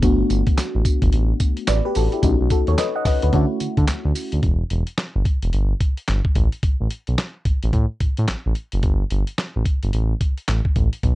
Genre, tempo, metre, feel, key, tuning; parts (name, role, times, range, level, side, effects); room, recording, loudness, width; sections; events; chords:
R&B, new jack swing; 109 BPM; 4/4; swing 61% on 16ths; A4 = 440 Hz
mellow FM electric piano; accompaniment; 0.0-4.5 s; A3 to F#5; -22 LUFS; left 2 dB; chorus, phaser
smooth synth bass; bass; 0.0-11.2 s; E1 to D3; -20 LUFS; equal
dusty soul sampler-style drum kit; drums; 0.0-11.2 s; handclaps, hi-hat, kick drum, snare drum, tambourine; -20 LUFS; equal
little or no reverb; dark, warm production, nothing above 10.7 kHz; -18 LUFS; side -17 dB against mid
0.0-4.4 A section; 4.4-11.2 B section
0.0 Gmaj7; 2.2 B7; 3.3 Dmaj7; 4.4 Em; 6.4 N.C.; 8.8 Gsus2